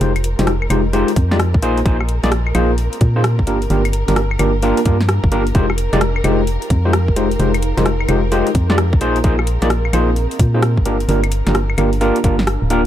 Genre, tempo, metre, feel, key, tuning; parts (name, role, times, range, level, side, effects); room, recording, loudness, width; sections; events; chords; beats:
UK garage, two-step garage; 130 BPM; 4/4; swing 65% on 16ths; F dorian; A4 = 440 Hz
rich studio violin section; sustained chords; 0.0-12.9 s; Bb4; -28 LUFS; right 1 dB; sidechain pumping
overdriven tine electric piano; stabs; 0.0-12.8 s; Ab3 to D5; -18 LUFS; equal; lush chorus, dub echo
organ-like FM bass; bass; 0.0-12.9 s; D1 to Bb2; -17 LUFS; equal
garage drum kit; drums; 0.0-12.8 s; claves, hi-hat, rim click, snare drum; -22 LUFS; left 1 dB
granular cloud pad; texture; 0.0-12.9 s; C4 to G5; -32 LUFS; right 2 dB
electronic kick drum; drums; 1.2-12.4 s; -15 LUFS; equal
little or no reverb; -14 LUFS; side -11 dB against mid
0.0-12.9 A section
kick drops out 12.5-12.9
0.0 Fm9; 1.6 Bb9sus4; 3.5 Gm7; 5.5 Fm9; 9.0 Bb9sus4; 10.9 Gm7
| 0.01 0.47 0.93 1.40 | 1.86 2.32 2.78 3.24 | 3.70 4.17 4.63 5.09 | 5.55 6.01 6.47 6.93 | 7.40 7.86 8.32 8.78 | 9.24 9.70 10.16 10.63 | 11.09 11.55 12.01 12.47